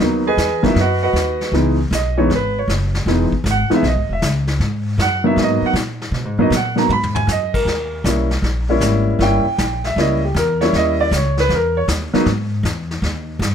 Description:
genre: jazz piano trio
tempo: 156 BPM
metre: 4/4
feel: swing 67% on 8ths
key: G# minor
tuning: A4 = 443 Hz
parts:
  - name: warm upright piano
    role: melody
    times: 0.0-12.3 s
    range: E3 to B5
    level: -17 LUFS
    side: right 1 dB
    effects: none
  - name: upright bass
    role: bass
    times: 0.0-13.5 s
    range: E1 to B2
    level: -20 LUFS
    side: equal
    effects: none
  - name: vintage brush drum kit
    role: drums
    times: 0.0-13.5 s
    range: brushed snare drum, crash cymbal, hi-hat, kick drum, snare drum, toms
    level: -25 LUFS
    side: left 2 dB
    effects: none
room: light reverb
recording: none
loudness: -15 LUFS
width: side -8 dB against mid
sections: 0.0-13.5 A section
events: upright piano solo 0.0-13.5; drum fill 6.9-7.3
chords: 0.0 G#m7; 1.5 C#m7; 4.6 G#m7; 7.7 D#7b9; 12.3 E; 13.0 D#

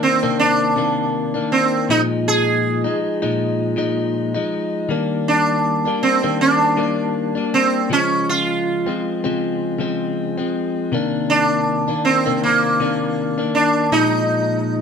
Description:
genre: indie pop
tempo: 80 BPM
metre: 4/4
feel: swing 55% on 16ths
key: Eb major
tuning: A4 = 439 Hz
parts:
  - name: sitar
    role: melody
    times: 0.0-14.8 s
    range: Bb3 to Ab4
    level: -18 LUFS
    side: right 2 dB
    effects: none
  - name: direct-recorded clean electric guitar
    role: accompaniment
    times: 0.0-14.8 s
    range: Bb2 to Eb4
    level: -20 LUFS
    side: left 3 dB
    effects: vibrato effect
room: wet small room reverb, RT60 0.5 s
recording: band playing live in one room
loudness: -16 LUFS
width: side -6 dB against mid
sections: 0.0-14.8 A section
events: none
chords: 0.0 Cm9; 1.9 Bb7sus4; 4.9 Ebmaj7; 7.9 Dbmaj7; 10.9 Cm9; 13.9 Bb7sus4

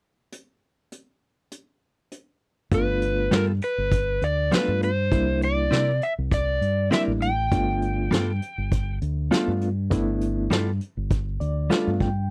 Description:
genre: straight-eighth soul blues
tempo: 100 BPM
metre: 4/4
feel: swing 55% on 16ths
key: G mixolydian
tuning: A4 = 440 Hz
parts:
  - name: vintage brush drum kit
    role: drums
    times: 0.3-12.2 s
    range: hi-hat, kick drum, snare drum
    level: -28 LUFS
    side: equal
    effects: none
  - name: overdriven slide guitar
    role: melody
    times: 2.7-9.0 s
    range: Bb4 to G5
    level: -28 LUFS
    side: equal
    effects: none
  - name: overdriven reed electric piano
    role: accompaniment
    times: 2.7-12.3 s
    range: G3 to G5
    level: -29 LUFS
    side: equal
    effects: fast tremolo
  - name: fingered electric bass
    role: bass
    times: 2.7-12.3 s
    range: G1 to C3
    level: -28 LUFS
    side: equal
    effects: none
  - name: direct-recorded clean electric guitar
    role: stabs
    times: 3.3-11.9 s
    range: G3 to D5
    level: -28 LUFS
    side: equal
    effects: none
room: little or no reverb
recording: dry, close 1970s-style studio recording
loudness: -24 LUFS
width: mono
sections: 0.3-2.7 A section; 2.7-12.3 B section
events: reed electric piano fill 11.1-12.3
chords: 0.3 N.C.; 2.7 G9; 5.1 C9; 7.5 G9

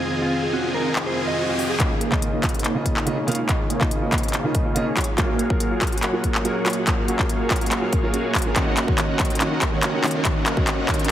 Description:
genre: future bass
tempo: 142 BPM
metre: 4/4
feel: half-time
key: Db major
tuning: A4 = 439 Hz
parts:
  - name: airy breathy pad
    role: sustained chords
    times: 0.0-11.1 s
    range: F2 to Bb4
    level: -34 LUFS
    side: left 1 dB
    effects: none
  - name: thumb-piano-like synth pluck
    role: arpeggios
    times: 0.0-11.1 s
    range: Bb3 to Eb5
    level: -31 LUFS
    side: right 3 dB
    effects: chorus, sidechain pumping, digital delay
  - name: dense compressed supersaw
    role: riff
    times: 0.0-11.1 s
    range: Bb3 to Ab5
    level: -26 LUFS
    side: equal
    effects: cassette tape, sidechain pumping, low-pass filter
  - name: riser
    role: sound effects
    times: 0.0-1.8, 9.7-11.1 s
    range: none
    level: -30 LUFS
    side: equal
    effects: none
  - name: mellow electric guitar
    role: melody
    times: 0.2-1.7 s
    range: F4 to Eb5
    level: -29 LUFS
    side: equal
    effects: spring reverb, sidechain pumping, tape echo
  - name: trap drum kit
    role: drums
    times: 1.0-11.1 s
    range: handclaps, hi-hat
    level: -25 LUFS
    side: left 1 dB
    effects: none
  - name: warm grand piano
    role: accompaniment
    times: 1.8-11.1 s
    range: Db3 to F5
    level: -27 LUFS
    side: right 2 dB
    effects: sidechain pumping, digital delay
  - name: fat analog bass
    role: bass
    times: 1.8-11.1 s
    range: Eb1 to Gb2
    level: -33 LUFS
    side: equal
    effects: none
  - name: electronic kick drum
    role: drums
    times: 1.8-11.0 s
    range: none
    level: -23 LUFS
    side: equal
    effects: none
room: moderate lush hall reverb, RT60 1.7 s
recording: heavily compressed radio sound, multiband compression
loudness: -19 LUFS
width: side -11 dB against mid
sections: 0.0-1.8 A section; 1.8-11.1 B section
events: riser 0.0-1.8; filter sweep on drum 0.0-1.8; build-up 1.8-11.1; drum fill 1.8-11.1; filter sweep on supersaw synth 1.8-11.1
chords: 0.0 Fm7; 1.8 Db69; 5.0 Gbmaj9; 8.6 Ebm7

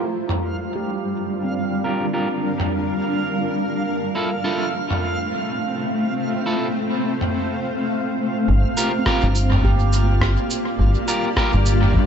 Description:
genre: ambient dub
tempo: 104 BPM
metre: 4/4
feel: swing 60% on 16ths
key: G minor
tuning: A4 = 441 Hz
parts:
  - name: granular cloud pad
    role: sustained chords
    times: 0.0-12.1 s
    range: G3 to F5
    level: -23 LUFS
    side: equal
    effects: built-in reverb
  - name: electric guitar at the edge of break-up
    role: stabs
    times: 0.0-11.5 s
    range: E4 to Bb4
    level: -28 LUFS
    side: right 1 dB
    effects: low-pass filter, dub echo
  - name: backwards swelling texture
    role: texture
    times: 0.5-12.1 s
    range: F4 to F5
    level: -30 LUFS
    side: right 2 dB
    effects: built-in reverb
  - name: lo-fi sampler-style drum kit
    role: drums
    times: 0.3-11.9 s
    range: cabasa, rim click, toms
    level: -26 LUFS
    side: equal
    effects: low-pass filter on perc, low-pass filter on snare, low-pass filter on toms, low-pass filter on room, dub echo
  - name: handpan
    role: arpeggios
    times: 0.8-4.1, 9.0-12.1 s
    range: C4 to G4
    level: -31 LUFS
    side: right 6 dB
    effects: low-pass filter, dub echo
  - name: deep dub fingered electric bass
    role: bass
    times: 8.5-12.1 s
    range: G1 to G2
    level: -17 LUFS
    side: equal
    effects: none
  - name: electronic kick drum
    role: drums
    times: 8.5-12.1 s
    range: none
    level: -22 LUFS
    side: equal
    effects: none
room: light reverb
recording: nothing above 8.0 kHz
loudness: -19 LUFS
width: side -8 dB against mid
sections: 0.0-8.5 A section; 8.5-12.1 B section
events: filter sweep on clean electric guitar 0.0-8.5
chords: 0.0 Gm7; 3.9 F; 8.5 Gm7

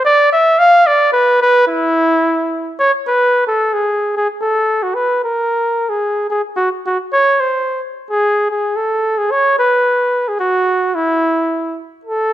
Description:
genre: alpine folk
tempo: 110 BPM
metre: 2/4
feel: straight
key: unclear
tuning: A4 = 440 Hz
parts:
  - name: warm flugelhorn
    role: solo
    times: 0.0-12.3 s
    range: E4 to F5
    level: -12 LUFS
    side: equal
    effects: none
room: moderate recital hall reverb, RT60 1.8 s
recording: none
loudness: -12 LUFS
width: side -12 dB against mid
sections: 0.0-3.3 A section; 3.3-12.0 B section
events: none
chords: none

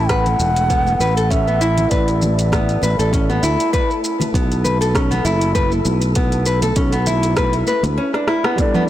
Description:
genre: organic downtempo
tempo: 99 BPM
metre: 4/4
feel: swing 55% on 16ths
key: B minor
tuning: A4 = 440 Hz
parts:
  - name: mellow bass bansuri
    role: melody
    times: 0.0-3.4, 8.6-8.9 s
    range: D5 to A5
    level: -22 LUFS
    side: right 1 dB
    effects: digital delay
  - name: nylon-string guitar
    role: arpeggios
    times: 0.0-8.8 s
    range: B3 to B4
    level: -19 LUFS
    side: left 1 dB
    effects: tape echo
  - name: sustaining fretless electric bass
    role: bass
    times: 0.0-8.0 s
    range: E1 to D2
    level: -19 LUFS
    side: equal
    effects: sidechain pumping
  - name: wind-like tuned noise texture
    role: texture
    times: 0.0-8.0 s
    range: A3 to A4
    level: -30 LUFS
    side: right 1 dB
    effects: built-in reverb
  - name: deep house drum kit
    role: drums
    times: 0.1-8.9 s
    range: congas, hi-hat, rim click, shaker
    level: -25 LUFS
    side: right 1 dB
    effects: none
  - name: electronic kick drum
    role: drums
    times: 0.1-8.7 s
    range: none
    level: -20 LUFS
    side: equal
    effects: none
  - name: congas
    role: percussion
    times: 0.3-7.9 s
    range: none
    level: -27 LUFS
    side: left 2 dB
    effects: none
  - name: felt-muted upright piano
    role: accompaniment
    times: 8.6-8.9 s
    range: G3 to A4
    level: -20 LUFS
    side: equal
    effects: sidechain pumping
  - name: ethereal airy pad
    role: sustained chords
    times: 8.8-8.9 s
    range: D3 to A4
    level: -32 LUFS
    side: left 6 dB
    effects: none
room: light reverb, studio reverb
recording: blown-out, overdriven recording, overdrive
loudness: -15 LUFS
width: side -13 dB against mid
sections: 0.0-8.6 A section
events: drum fill 8.1-8.6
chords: 0.0 Asus4; 3.7 B7(no3)

